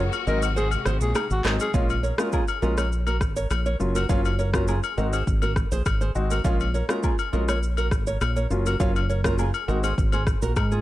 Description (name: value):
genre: afrobeats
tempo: 102 BPM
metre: 4/4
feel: straight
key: Bb minor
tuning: A4 = 441 Hz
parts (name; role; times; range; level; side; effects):
- warm studio string section; sustained chords; 0.0-1.7 s; C3 to Gb4; -34 LUFS; left 2 dB; none
- nylon-string guitar; riff; 0.0-10.8 s; Eb4 to F5; -30 LUFS; right 4 dB; ping-pong delay
- fingered electric bass; bass; 0.0-10.8 s; Gb1 to Ab2; -25 LUFS; equal; none
- afro-pop drum kit; drums; 0.1-10.8 s; handclaps, kick drum, rim click, shaker; -26 LUFS; equal; vintage 12-bit sampler grit
- agogo bells and woodblock; percussion; 0.1-10.7 s; none; -32 LUFS; left 8 dB; none
- growling alto saxophone; melody; 0.3-1.7 s; Gb4 to Bb4; -30 LUFS; equal; ping-pong delay
- warm grand piano; accompaniment; 0.3-9.9 s; Gb3 to Gb4; -30 LUFS; left 2 dB; none
room: studio ambience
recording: none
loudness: -21 LUFS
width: side -15 dB against mid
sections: 0.0-1.7 A section; 1.7-10.8 B section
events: kick muted 0.6-1.7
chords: 0.3 Ab7; 1.7 Bbm7; 3.8 Gbmaj7; 5.0 Ab7; 6.4 Bbm7; 8.5 Gbmaj7; 9.7 Ab7